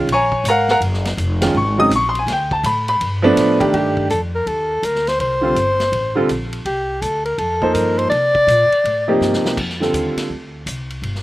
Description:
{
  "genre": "modal jazz",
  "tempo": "164 BPM",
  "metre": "4/4",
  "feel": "swing 64% on 8ths",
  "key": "C dorian from 3.7 s",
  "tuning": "A4 = 440 Hz",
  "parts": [
    { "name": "warm baby grand piano", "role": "accompaniment", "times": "0.0-10.3 s", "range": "C3 to Eb6", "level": "-16 LUFS", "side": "right 1 dB", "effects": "none" },
    { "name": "upright bass", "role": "bass", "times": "0.0-11.2 s", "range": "F1 to C3", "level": "-24 LUFS", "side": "equal", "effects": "none" },
    { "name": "vintage drum kit", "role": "drums", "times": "0.1-11.2 s", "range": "crash cymbal, hi-hat, kick drum, ride cymbal, snare drum", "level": "-28 LUFS", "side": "equal", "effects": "none" },
    { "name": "mellow soprano saxophone", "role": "melody", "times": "3.7-9.2 s", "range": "G4 to D5", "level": "-17 LUFS", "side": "left 1 dB", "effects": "none" }
  ],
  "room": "little or no reverb",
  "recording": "recorded outdoors, with no room sound",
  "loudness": "-15 LUFS",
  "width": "side -16 dB against mid",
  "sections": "0.0-3.7 A section; 3.7-11.2 B section",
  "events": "drum fill 9.2-9.6",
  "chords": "0.0 Ebm11; 2.3 G9; 3.7 C13sus4",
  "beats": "0.09 0.45 | 0.82 1.18 1.54 1.91 | 2.27 2.64 3.00 3.37 | 3.73 4.10 4.46 4.83 | 5.19 5.56 5.92 6.29 | 6.65 7.02 7.38 7.75 | 8.11 8.48 8.84 9.21 | 9.57 9.94 10.30 10.67 | 11.03"
}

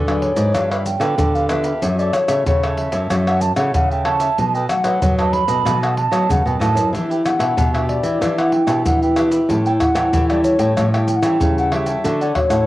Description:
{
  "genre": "samba and choro",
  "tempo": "94 BPM",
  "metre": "4/4",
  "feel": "straight",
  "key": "unclear",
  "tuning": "A4 = 440 Hz",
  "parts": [
    { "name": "cavaquinho", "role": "accompaniment", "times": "0.0-12.7 s", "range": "D4 to G5", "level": "-27 LUFS", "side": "right 2 dB", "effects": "none" },
    { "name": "nylon-string guitar", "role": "accompaniment", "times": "0.0-12.7 s", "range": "F#2 to A4", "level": "-28 LUFS", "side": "left 3 dB", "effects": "none" },
    { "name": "nylon-string guitar", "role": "bass", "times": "0.0-12.6 s", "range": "F#2 to F#3", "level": "-19 LUFS", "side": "equal", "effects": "none" },
    { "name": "mellow hollow baroque flute", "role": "melody", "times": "0.1-12.7 s", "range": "C#5 to B5", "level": "-20 LUFS", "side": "equal", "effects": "cassette tape" },
    { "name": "maracas, pandeiro, tamborim and surdo", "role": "percussion", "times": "0.1-12.7 s", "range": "none", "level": "-22 LUFS", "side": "equal", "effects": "none" }
  ],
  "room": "light reverb, studio reverb",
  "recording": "home recording on cassette",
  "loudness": "-15 LUFS",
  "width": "side -16 dB against mid",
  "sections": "0.0-12.7 A section",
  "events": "none",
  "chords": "0.0 G#m7b5; 0.5 G9; 1.8 F#m7; 4.4 B7; 6.9 Em7; 9.5 A7; 12.0 Dmaj7",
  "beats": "0.55 1.19 | 1.82 2.46 3.10 3.74 | 4.38 5.02 5.66 6.30 | 6.94 7.58 8.22 8.86 | 9.49 10.13 10.77 11.41 | 12.05"
}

